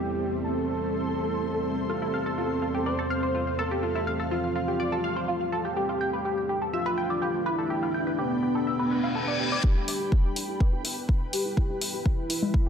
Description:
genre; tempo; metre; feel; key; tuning
melodic techno; 124 BPM; 4/4; straight; E phrygian; A4 = 441 Hz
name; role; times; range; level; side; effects
wide unison lead; melody; 0.0-12.7 s; B3 to C5; -30 LUFS; equal; sidechain pumping, ping-pong delay
deep dark ambient pad; sustained chords; 0.0-12.7 s; G3 to F5; -35 LUFS; equal; chorus, built-in reverb, sidechain pumping
bowed-like drone; drone; 0.0-9.7 s; E2 to G3; -36 LUFS; right 1 dB; built-in reverb, sidechain pumping
ethereal airy pad; texture; 0.0-12.7 s; C4 to C6; -35 LUFS; right 1 dB; ensemble chorus, built-in reverb, tremolo, sidechain pumping
tight sequenced synth; arpeggios; 1.9-12.7 s; D4 to G5; -32 LUFS; equal; chorus, phaser, sidechain pumping, ping-pong delay
reverse cymbal; sound effects; 8.9-9.6 s; none; -31 LUFS; left 5 dB; none
electronic kick drum; drums; 9.6-12.6 s; none; -23 LUFS; equal; none
electronic hi-hat and congas; drums; 9.9-12.5 s; none; -30 LUFS; left 2 dB; none
room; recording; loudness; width
moderate plate reverb, RT60 1.7 s, digital ambience; dreamy mix soaked in reverb; -25 LUFS; side -7 dB against mid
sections
0.0-9.6 A section; 9.6-12.7 B section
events
reverse cymbal 8.9-9.6; build-up 9.6-12.7; filter sweep on synth arpeggio sound 9.6-12.7; filter sweep on analog synth lead 9.6-12.7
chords
0.0 Am; 1.9 F; 5.8 Gadd9; 9.6 Em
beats
0.44 0.93 1.41 | 1.90 2.38 2.86 3.35 | 3.83 4.31 4.80 5.28 | 5.77 6.25 6.73 7.22 | 7.70 8.19 8.67 9.15 | 9.64 10.12 10.60 11.09 | 11.57 12.06 12.54

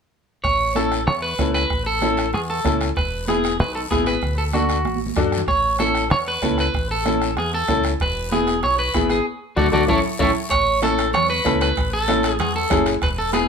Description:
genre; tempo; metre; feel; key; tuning
latin, cumbia; 191 BPM; 4/4; straight; A major; A4 = 442 Hz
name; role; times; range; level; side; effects
electric guitar at the edge of break-up; melody; 0.4-13.5 s; E4 to D5; -21 LUFS; right 1 dB; spring reverb
deep dub fingered electric bass; bass; 0.4-13.5 s; E1 to F#2; -26 LUFS; equal; none
bombo; percussion; 0.4-13.5 s; none; -27 LUFS; right 1 dB; none
congas; percussion; 0.4-13.5 s; none; -27 LUFS; right 7 dB; none
guiro; percussion; 0.4-13.5 s; none; -34 LUFS; left 4 dB; none
bright upright piano; accompaniment; 0.8-13.5 s; A3 to A4; -22 LUFS; left 5 dB; none
timbales; percussion; 10.5-13.5 s; none; -31 LUFS; right 5 dB; none
room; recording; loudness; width
light reverb; band playing live in one room; -18 LUFS; side -6 dB against mid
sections
0.4-10.5 A section; 10.5-13.5 A section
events
drum fill 4.9-5.5, 9.6-10.5; band accent 9.3-10.5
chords
0.4 A; 3.0 E; 4.2 D; 5.5 A; 8.0 E; 9.3 D; 9.9 A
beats
| 0.45 0.76 1.07 1.39 | 1.71 2.02 2.33 2.65 | 2.96 3.28 3.60 3.91 | 4.22 4.54 4.85 5.17 | 5.48 5.80 6.11 6.43 | 6.74 7.06 7.37 7.69 | 8.00 8.31 8.63 8.94 | 9.26 9.57 9.88 10.20 | 10.51 10.83 11.14 11.45 | 11.77 12.08 12.39 12.71 | 13.02 13.33

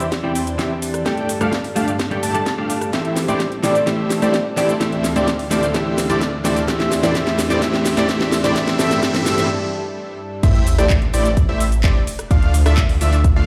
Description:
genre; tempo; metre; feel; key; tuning
EDM, festival progressive house; 128 BPM; 4/4; straight; A minor; A4 = 440 Hz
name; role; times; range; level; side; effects
lush unison pad; sustained chords; 0.0-10.4 s; D2 to F5; -30 LUFS; equal; chorus, sidechain pumping
unison lead; arpeggios; 0.0-13.5 s; D5 to A5; -27 LUFS; equal; sidechain pumping, delay
dense compressed supersaw; riff; 0.0-13.5 s; A3 to A5; -25 LUFS; equal; sidechain pumping, low-pass filter, delay
house drum kit; drums; 0.0-13.3 s; cabasa, crash cymbal, handclaps, hi-hat, rim click, snare drum; -26 LUFS; equal; none
electronic kick drum; drums; 0.1-13.3 s; none; -19 LUFS; equal; high-pass filter on kick
semi-hollow electric guitar; accompaniment; 0.2-9.5 s; E3 to A4; -26 LUFS; equal; sidechain pumping, delay
riser and sub drop; sound effects; 5.5-12.3 s; none; -31 LUFS; equal; none
detuned saw bass; bass; 10.4-13.5 s; A1 to D2; -20 LUFS; equal; chorus, sidechain pumping
room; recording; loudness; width
moderate digital room reverb, RT60 1.1 s; played on a big sound system in a bare room, large studio reverb; -18 LUFS; mono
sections
0.0-10.4 A section; 10.4-13.5 B section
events
build-up 0.0-10.4; drum fill 0.0-9.5; filter sweep on analog synth lead 0.0-10.4; break 9.5-10.4; drop 10.4-13.5; impact 10.4-12.3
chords
0.0 Cadd9/E; 1.1 Gsus2; 2.9 Am7; 4.8 Dm; 6.7 Cadd9/E; 8.6 Gsus2; 10.4 Am7; 12.3 Dm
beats
0.12 0.59 | 1.06 1.53 2.00 2.46 | 2.93 3.40 3.87 4.34 | 4.81 5.28 5.75 6.21 | 6.68 7.15 7.62 8.09 | 8.56 9.03 9.49 9.96 | 10.43 10.90 11.37 11.84 | 12.31 12.78 13.24

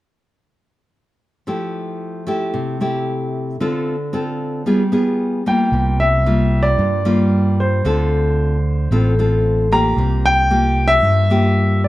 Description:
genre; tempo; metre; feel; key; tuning
bossa nova; 113 BPM; 4/4; straight; F major; A4 = 437 Hz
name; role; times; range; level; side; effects
nylon-string guitar; accompaniment; 1.5-11.9 s; G2 to A4; -19 LUFS; left 1 dB; none
warm grand piano; melody; 5.5-11.9 s; C5 to Bb5; -19 LUFS; equal; none
fingered electric bass; bass; 5.7-11.9 s; A1 to G2; -17 LUFS; equal; none
room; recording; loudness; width
light reverb; none; -15 LUFS; side -16 dB against mid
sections
1.5-5.7 A section; 5.7-11.9 B section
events
none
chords
1.5 Fmaj9; 3.6 Dm7; 4.7 G7b9; 5.7 C7sus4; 7.8 Dm7; 10.0 C7sus4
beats
| 1.47 2.00 2.54 3.07 | 3.60 4.13 4.66 5.19 | 5.72 6.25 6.79 7.32 | 7.85 8.38 8.91 9.44 | 9.97 10.50 11.03 11.56

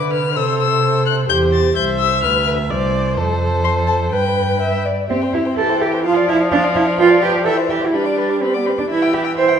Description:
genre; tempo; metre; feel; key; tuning
quick classical-period movement for string quartet; 127 BPM; 2/4; straight; C major; A4 = 440 Hz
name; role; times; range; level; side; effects
dark violin; melody; 0.0-9.6 s; E5 to A6; -22 LUFS; left 9 dB; none
dark violin; second line; 0.0-9.6 s; G4 to G5; -22 LUFS; left 4 dB; none
rich viola; accompaniment; 0.0-9.6 s; E3 to E5; -21 LUFS; right 1 dB; none
warm cello; bass; 0.0-9.6 s; C2 to C5; -18 LUFS; right 4 dB; none
room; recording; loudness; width
wet recital hall reverb, RT60 1.5 s; minimal, uncompressed stereo recording; -14 LUFS; side -8 dB against mid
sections
0.0-5.1 A section; 5.1-9.6 B section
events
none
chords
0.4 C; 1.3 C/E; 2.2 Dm69; 2.7 Csus2; 3.2 F; 4.1 G; 5.1 C; 5.6 C/E; 6.0 Dm/F; 7.0 G7/F; 7.5 C/E; 7.9 G; 8.9 Em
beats
| 0.36 0.83 | 1.29 1.76 | 2.23 2.70 | 3.18 3.65 | 4.13 4.61 | 5.10 5.58 | 6.05 6.52 | 6.99 7.45 | 7.93 8.41 | 8.89 9.37

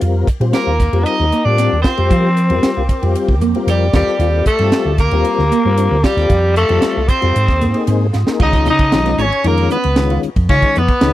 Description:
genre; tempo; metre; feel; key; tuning
electric jazz fusion; 115 BPM; 4/4; straight; F mixolydian; A4 = 441 Hz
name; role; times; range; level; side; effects
mellow tonewheel organ; accompaniment; 0.0-11.1 s; Eb3 to C5; -20 LUFS; left 6 dB; slow rotary speaker, overdrive, chorus vibrato
ethereal airy pad; sustained chords; 1.1-8.4 s; G4 to Eb6; -30 LUFS; right 1 dB; ensemble chorus, built-in reverb, tremolo
mellow electric guitar; stabs; 0.0-11.1 s; Bb3 to G4; -24 LUFS; right 3 dB; analog chorus
fingered electric bass; bass; 0.0-11.1 s; Ab1 to F3; -16 LUFS; equal; none
crisp fusion drum kit; drums; 0.0-11.1 s; crash cymbal, hi-hat, kick drum, ride cymbal, snare drum; -17 LUFS; right 1 dB; none
growling tenor saxophone; melody; 0.5-11.1 s; G3 to Eb4; -17 LUFS; left 2 dB; none
overdriven semi-hollow guitar; second line; 0.5-11.1 s; G4 to Eb5; -23 LUFS; right 9 dB; none
room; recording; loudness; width
little or no reverb; dry, close 1970s-style studio recording; -12 LUFS; side -14 dB against mid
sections
0.0-8.4 A section; 8.4-11.1 B section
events
drum fill 8.1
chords
0.0 F13sus4; 3.9 Ebmaj9; 6.3 F7; 7.3 Ab7; 8.4 Db9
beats
| 0.02 0.54 1.06 1.59 | 2.11 2.63 3.16 3.68 | 4.21 4.73 5.25 5.78 | 6.30 6.82 7.35 7.87 | 8.40 8.92 9.44 9.97 | 10.49 11.01

